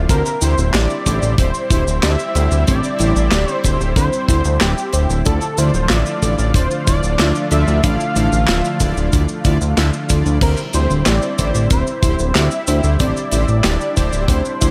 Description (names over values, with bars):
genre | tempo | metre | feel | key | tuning
synthwave | 93 BPM | 4/4 | straight | unclear | A4 = 441 Hz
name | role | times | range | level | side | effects
analog string pad | sustained chords | 0.0-14.7 s | D3 to F4 | -27 LUFS | equal | ensemble chorus, sidechain pumping
soft round pluck | arpeggios | 0.0-14.7 s | C4 to C5 | -29 LUFS | equal | chorus, tape echo
fat analog bass | bass | 0.0-14.7 s | D1 to D2 | -19 LUFS | equal | none
unison lead | melody | 0.1-14.7 s | G4 to F5 | -25 LUFS | equal | tape echo
analog synth brass | stabs | 0.1-14.7 s | D3 to E5 | -28 LUFS | equal | chorus, tape echo
kick drum | drums | 0.1-14.7 s | none | -19 LUFS | equal | none
tight metal drum kit | drums | 0.1-14.7 s | cabasa, crash cymbal, handclaps, hi-hat, snare drum | -24 LUFS | equal | none
room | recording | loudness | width
light reverb, small room ambience | none | -16 LUFS | mono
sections
0.0-14.7 A section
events
none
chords
0.1 C/D; 5.3 Dmadd9; 10.4 C/D